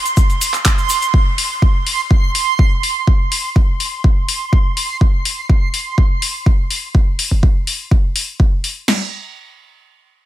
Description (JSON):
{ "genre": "progressive house", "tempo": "124 BPM", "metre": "4/4", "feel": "straight", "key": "unclear", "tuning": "A4 = 440 Hz", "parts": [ { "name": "backwards swelling texture", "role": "texture", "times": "0.0-5.0 s", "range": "C6", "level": "-21 LUFS", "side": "right 5 dB", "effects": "built-in reverb, sidechain pumping" }, { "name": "deep house drum kit", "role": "drums", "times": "0.1-8.7 s", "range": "handclaps, hi-hat", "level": "-20 LUFS", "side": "left 3 dB", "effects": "overdrive" }, { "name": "tube shaker", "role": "percussion", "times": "0.1-1.1 s", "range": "none", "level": "-24 LUFS", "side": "right 3 dB", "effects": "none" }, { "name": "deep house drum kit", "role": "drums", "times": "0.2-9.0 s", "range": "crash cymbal, kick drum, snare drum", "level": "-13 LUFS", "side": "equal", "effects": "overdrive" } ], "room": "little or no reverb", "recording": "none", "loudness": "-13 LUFS", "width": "side -14 dB against mid", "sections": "0.0-8.9 A section; 8.9-10.3 B section", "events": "none", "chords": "none" }